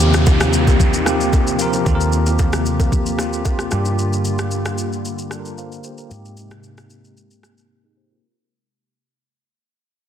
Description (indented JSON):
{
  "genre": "amapiano",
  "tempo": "113 BPM",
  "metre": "4/4",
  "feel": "straight",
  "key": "Eb major",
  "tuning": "A4 = 441 Hz",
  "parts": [
    { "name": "bell-like tine electric piano", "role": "accompaniment", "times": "0.0-8.4 s", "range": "Bb3 to F5", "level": "-22 LUFS", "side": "equal", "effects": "medium stereo tremolo, low-pass filter" },
    { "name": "hollow soft pad", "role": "sustained chords", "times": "0.0-8.2 s", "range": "C3 to G4", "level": "-25 LUFS", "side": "left 1 dB", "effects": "ensemble chorus, low-pass filter" },
    { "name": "hollow-body short-scale fingered electric bass", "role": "bass", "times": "0.0-8.2 s", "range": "Eb2 to Ab2", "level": "-21 LUFS", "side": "equal", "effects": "none" },
    { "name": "smooth R&B drum kit", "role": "drums", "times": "0.0-7.7 s", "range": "kick drum, rim click, shaker", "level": "-19 LUFS", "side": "equal", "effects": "soft clipping on snare" },
    { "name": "downlifter", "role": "sound effects", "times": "0.0-4.0 s", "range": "none", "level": "-26 LUFS", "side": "equal", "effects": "none" },
    { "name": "bongos and congas", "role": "percussion", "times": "0.1-4.0 s", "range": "none", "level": "-28 LUFS", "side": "right 5 dB", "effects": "none" }
  ],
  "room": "light reverb, digital ambience",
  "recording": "dense, heavily limited modern master",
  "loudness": "-15 LUFS",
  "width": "side -9 dB against mid",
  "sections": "0.0-8.2 A section",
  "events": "fade-out 0.0-8.2; filter sweep 0.0-8.2; break 7.7-8.2",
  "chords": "0.0 Eb69; 3.7 Gm7; 6.1 Abmaj9"
}